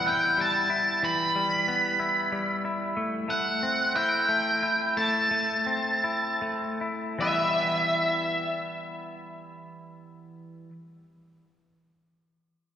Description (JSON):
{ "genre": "rock", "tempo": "49-62 BPM (dotted quarters)", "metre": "6/8", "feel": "straight", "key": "E minor", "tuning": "A4 = 442 Hz", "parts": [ { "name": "octave-fuzz lead guitar", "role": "melody", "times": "0.0-10.3 s", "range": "E5 to B5", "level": "-25 LUFS", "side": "equal", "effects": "distortion" }, { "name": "twangy electric guitar", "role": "arpeggios", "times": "0.0-10.7 s", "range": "E3 to B4", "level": "-30 LUFS", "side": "left 2 dB", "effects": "none" } ], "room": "wet church reverb, RT60 2.7 s", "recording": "recorded in a church or concert hall", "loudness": "-24 LUFS", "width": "side -9 dB against mid", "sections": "0.0-7.2 A section; 7.2-12.1 B section", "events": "slowing down 3.0-7.2", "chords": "0.0 Em; 3.0 Am; 7.2 Em" }